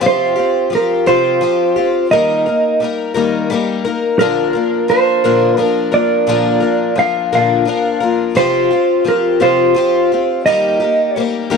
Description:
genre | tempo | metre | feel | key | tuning
rock | 58 BPM (dotted quarters) | 6/8 | straight | unclear | A4 = 440 Hz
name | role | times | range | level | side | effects
picked twelve-string acoustic guitar | accompaniment | 0.0-11.6 s | Bb2 to Bb4 | -15 LUFS | left 7 dB | none
mellow electric guitar | melody | 0.1-11.2 s | Bb4 to F5 | -14 LUFS | right 5 dB | none
room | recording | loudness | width
moderate echo chamber reverb, RT60 1.9 s | dark, warm production | -12 LUFS | side -5 dB against mid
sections
0.0-11.6 A section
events
none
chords
0.0 Csus4; 2.1 Eb; 4.2 Bb; 8.4 Csus4; 10.5 Eb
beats
| 0.03 1.07 | 2.11 3.15 | 4.20 5.24 | 6.28 7.33 | 8.37 9.41 | 10.46 11.51

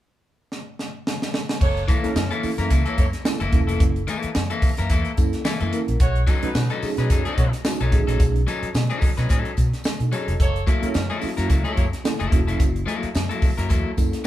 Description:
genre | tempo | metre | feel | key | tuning
funk | 109 BPM | 4/4 | swing 56% on 16ths | unclear | A4 = 438 Hz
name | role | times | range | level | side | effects
crisp fusion drum kit | drums | 0.5-14.2 s | crash cymbal, hi-hat, kick drum, snare drum | -22 LUFS | equal | none
warm horn section | second line | 1.6-11.9 s | E3 to C#5 | -30 LUFS | right 3 dB | none
vintage muted fingered electric bass | bass | 1.6-14.1 s | E1 to B2 | -24 LUFS | equal | none
tambourine | percussion | 1.6-14.3 s | none | -43 LUFS | left 6 dB | none
electric guitar at the edge of break-up | accompaniment | 1.9-14.3 s | E3 to B4 | -27 LUFS | left 4 dB | tube saturation, spring reverb
mellow tine electric piano | stabs | 1.9-14.3 s | A3 to D#5 | -28 LUFS | right 3 dB | medium stereo tremolo
room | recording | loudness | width
light reverb | band playing live in one room | -19 LUFS | side -14 dB against mid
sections
0.0-1.6 A section; 1.6-14.3 B section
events
drum fill 0.5-1.6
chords
0.0 N.C.; 1.6 F#7#9; 6.0 B9; 10.4 F#7#9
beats
0.51 1.06 | 1.61 2.16 2.71 3.26 | 3.81 4.36 4.90 5.45 | 6.00 6.55 7.10 7.65 | 8.20 8.75 9.30 9.85 | 10.40 10.95 11.50 12.05 | 12.60 13.15 13.70 14.25

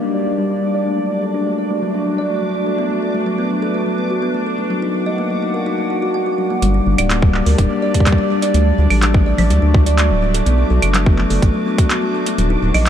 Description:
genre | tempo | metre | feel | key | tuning
IDM | 125 BPM | 4/4 | straight | G harmonic minor | A4 = 440 Hz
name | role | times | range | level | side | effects
warbly tape-like pad | sustained chords | 0.0-12.9 s | A3 to Gb5 | -23 LUFS | right 1 dB | chorus, built-in reverb, vintage 12-bit sampler grit
kalimba | arpeggios | 0.0-12.9 s | F#3 to Gb5 | -19 LUFS | left 2 dB | vintage 12-bit sampler grit, low-pass filter, digital delay
bubbling stepped-filter texture | texture | 0.0-12.9 s | D4 to D6 | -26 LUFS | left 1 dB | chorus, built-in reverb, sidechain pumping
round analog bass | bass | 6.6-12.9 s | D1 to D2 | -15 LUFS | equal | tube saturation
booming analog drum machine | drums | 6.6-12.9 s | claves, congas, handclaps, hi-hat | -22 LUFS | right 2 dB | none
electronic kick drum | drums | 7.2-11.9 s | none | -14 LUFS | equal | overdrive
room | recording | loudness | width
light reverb | dark, warm production | -14 LUFS | side -9 dB against mid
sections
0.0-6.6 A section; 6.6-12.9 B section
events
filter sweep on kalimba 0.0-6.6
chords
0.0 Gm; 0.9 D; 2.8 Bm7; 4.7 Ebm; 6.6 Gm; 8.5 D; 10.5 Bm7; 12.4 Ebm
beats
0.38 | 0.86 1.34 1.82 2.30 | 2.78 3.26 3.74 4.22 | 4.70 5.18 5.66 6.14 | 6.62 7.10 7.58 8.06 | 8.54 9.02 9.50 9.98 | 10.46 10.94 11.42 11.90 | 12.38 12.86

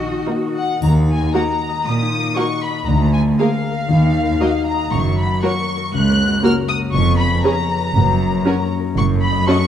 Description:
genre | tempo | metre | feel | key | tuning
cinematic, playful, whimsical film cue | 118 BPM | 4/4 | straight | Eb minor | A4 = 439 Hz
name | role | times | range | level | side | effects
rich chamber violin section | second line | 0.0-9.6 s | A4 to Gb5 | -29 LUFS | left 2 dB | none
concert harp | arpeggios | 0.0-9.7 s | F2 to Gb5 | -20 LUFS | left 5 dB | none
clear chamber cello section | bass | 0.0-9.4 s | Db2 to Gb4 | -21 LUFS | right 3 dB | none
rich chamber double bass section | bass | 0.0-9.4 s | F1 to Eb2 | -20 LUFS | right 4 dB | none
rich chamber violin section | melody | 0.3-9.7 s | Gb4 to Gb6 | -22 LUFS | left 2 dB | none
rich studio viola section | accompaniment | 0.3-9.6 s | Bb3 to Ab4 | -20 LUFS | right 1 dB | none
triangle | percussion | 0.8-1.8 s | none | -45 LUFS | left 2 dB | none
room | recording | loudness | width
moderate scoring stage reverb, RT60 1.8 s | dark, warm production | -15 LUFS | side -9 dB against mid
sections
0.8-9.7 A section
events
none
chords
0.0 Ebm; 2.9 Bb7/D; 3.9 Ebm; 4.9 Gb; 6.9 Db7/F; 8.0 Gb; 9.0 D#m7b5/F#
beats
0.28 | 0.82 1.34 1.85 2.37 | 2.88 3.39 3.90 4.41 | 4.92 5.43 5.94 6.44 | 6.95 7.45 7.96 8.46 | 8.97 9.48

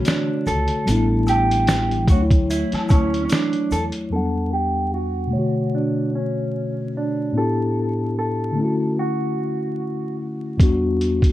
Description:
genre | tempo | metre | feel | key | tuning
lo-fi hip hop | 74 BPM | 4/4 | swing 56% on 16ths | E dorian | A4 = 440 Hz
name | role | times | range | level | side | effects
mellow electric guitar | melody | 0.0-10.2 s | C#4 to A4 | -25 LUFS | right 3 dB | low-pass filter
mellow tine electric piano | accompaniment | 0.0-11.3 s | E2 to F#5 | -22 LUFS | left 2 dB | medium stereo tremolo, cassette tape, low-pass filter
lo-fi sampler-style drum kit | drums | 0.1-4.1, 10.6-11.3 s | finger snaps, hi-hat, kick drum, snare drum | -19 LUFS | equal | none
egg shaker and woodblock | percussion | 0.1-3.9 s | none | -34 LUFS | left 1 dB | none
upright bass | bass | 0.5-3.9 s | A1 to E2 | -23 LUFS | equal | none
room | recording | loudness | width
moderate studio reverb, RT60 0.5 s | vinyl crackle | -18 LUFS | side -14 dB against mid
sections
0.0-4.1 A section; 4.1-11.3 B section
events
none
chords
0.0 Bm7 (rootless); 0.9 A7sus4; 2.1 Dmaj9; 4.1 Em7; 5.3 Bm7; 7.4 A7sus4; 8.6 Dmaj9; 10.6 Em7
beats
0.05 | 0.86 1.68 2.49 3.30 | 4.11 4.92 5.73 6.54 | 7.35 8.16 8.97 9.78 | 10.60

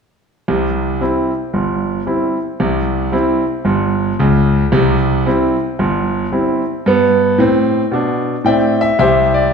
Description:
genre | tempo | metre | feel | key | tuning
jazz, stride piano | 113 BPM | 4/4 | swing 65% on 8ths | C major | A4 = 440 Hz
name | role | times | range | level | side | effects
bright concert grand piano | solo | 0.5-9.5 s | G1 to G5 | -13 LUFS | equal | none
room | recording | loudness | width
wet scoring stage reverb, RT60 1.8 s | recorded in a church or concert hall | -13 LUFS | side -6 dB against mid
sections
0.5-9.0 A section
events
none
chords
0.5 C; 6.9 G69; 9.0 C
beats
| 0.47 1.00 1.53 2.07 | 2.60 3.13 3.67 4.20 | 4.73 5.26 5.79 6.32 | 6.86 7.39 7.92 8.45 | 8.98 9.51

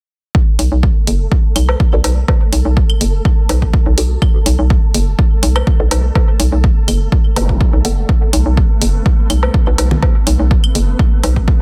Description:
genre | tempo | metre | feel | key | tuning
minimal techno | 124 BPM | 4/4 | swing 53% on 16ths | unclear | A4 = 445 Hz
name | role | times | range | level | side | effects
electronic kick drum | drums | 0.3-11.6 s | none | -15 LUFS | equal | overdrive
flickering grainy texture | texture | 0.5-11.6 s | A3 to A4 | -30 LUFS | equal | built-in reverb, sidechain pumping
hollow knocking FM bass | bass | 0.6-11.4 s | F#1 to B1 | -16 LUFS | equal | sidechain pumping
electronic hi-hat | drums | 0.6-11.3 s | none | -23 LUFS | equal | overdrive
claves, woodblock and congas | percussion | 1.6-11.3 s | none | -24 LUFS | equal | overdrive, tape echo
filtered dub chord stab | stabs | 1.9-9.7 s | B3 to A4 | -28 LUFS | equal | phaser, subtle chorus, tape echo
zap | sound effects | 7.4-7.5 s | none | -28 LUFS | equal | none
room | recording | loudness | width
digital ambience | dense, heavily limited modern master | -13 LUFS | mono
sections
0.3-11.6 A section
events
none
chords
0.3 B7(no3)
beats
| 0.35 0.83 1.32 1.80 | 2.28 2.77 3.25 3.73 | 4.22 4.70 5.19 5.67 | 6.16 6.64 7.12 7.61 | 8.09 8.57 9.06 9.54 | 10.03 10.51 10.99 11.48

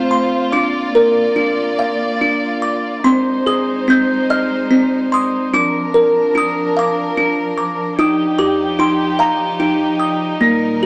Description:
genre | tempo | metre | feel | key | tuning
children's music, lullaby | 48 BPM (dotted quarters) | 6/8 | rubato | Eb major | A4 = 439 Hz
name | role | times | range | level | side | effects
music box | melody | 0.0-10.9 s | Bb3 to G6 | -17 LUFS | equal | none
dark chamber string section | sustained chords | 0.0-10.9 s | Bb2 to D5 | -23 LUFS | equal | none
room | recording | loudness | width
moderate studio reverb, RT60 0.8 s | none | -16 LUFS | mono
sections
0.0-10.9 A section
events
none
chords
0.0 F; 0.5 Bb; 3.0 Ab; 5.5 Bb; 8.0 Ebadd9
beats
| 0.53 1.78 | 3.05 4.30 | 5.54 6.77 | 7.99 9.20 | 10.42

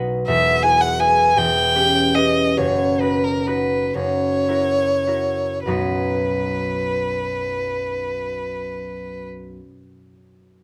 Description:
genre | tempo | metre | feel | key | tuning
classical, romantic duo for violin and harp | 32-56 BPM (dotted quarters) | 6/8 | rubato | B major | A4 = 440 Hz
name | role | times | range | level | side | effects
concert harp | accompaniment | 0.0-9.6 s | E1 to B4 | -24 LUFS | equal | none
rich violin | melody | 0.3-9.3 s | A#4 to G#5 | -22 LUFS | equal | none
room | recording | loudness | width
light reverb | close, detailed microphones | -20 LUFS | mono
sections
0.0-5.7 A section; 5.7-10.6 B section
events
slowing down 0.0-5.7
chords
0.3 E; 1.4 C#m7b5/E; 2.6 B/F#; 3.9 F#7; 5.7 B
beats
| 0.27 1.36 | 2.56 3.94 | 5.67 7.36 | 9.03

